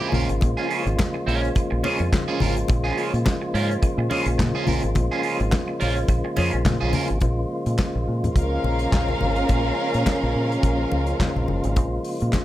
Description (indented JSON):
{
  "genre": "disco",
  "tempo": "106 BPM",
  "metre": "4/4",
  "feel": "swing 56% on 16ths",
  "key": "Bb minor",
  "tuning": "A4 = 440 Hz",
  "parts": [
    { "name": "electric guitar at the edge of break-up", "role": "accompaniment", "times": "0.0-7.1 s", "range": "Db4 to Bb4", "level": "-27 LUFS", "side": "right 4 dB", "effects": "phaser" },
    { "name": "tonewheel organ", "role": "sustained chords", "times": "0.0-12.4 s", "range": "Db3 to F4", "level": "-27 LUFS", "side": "left 1 dB", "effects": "overdrive, fast rotary speaker" },
    { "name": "deep dub fingered electric bass", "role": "bass", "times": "0.1-12.3 s", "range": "Gb1 to Bb2", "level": "-24 LUFS", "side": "equal", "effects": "none" },
    { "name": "modern studio drum kit", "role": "drums", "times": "0.1-12.4 s", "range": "handclaps, hi-hat, kick drum, snare drum", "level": "-24 LUFS", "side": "equal", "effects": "none" },
    { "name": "congas", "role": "percussion", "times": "0.1-12.4 s", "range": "none", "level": "-29 LUFS", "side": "left 3 dB", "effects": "none" },
    { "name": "warm studio violin section", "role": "second line", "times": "8.4-11.7 s", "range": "Db4 to F5", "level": "-25 LUFS", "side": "equal", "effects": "none" }
  ],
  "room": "light reverb, small room ambience",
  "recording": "none",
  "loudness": "-20 LUFS",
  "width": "side -14 dB against mid",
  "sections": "0.0-7.2 A section; 7.2-12.4 B section",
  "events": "none",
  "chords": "0.0 Bbm7",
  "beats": "| 0.42 0.99 1.56 2.12 | 2.69 3.26 3.83 4.39 | 4.96 5.53 6.09 6.66 | 7.23 7.80 8.36 8.93 | 9.50 10.07 10.63 11.20 | 11.77 12.33"
}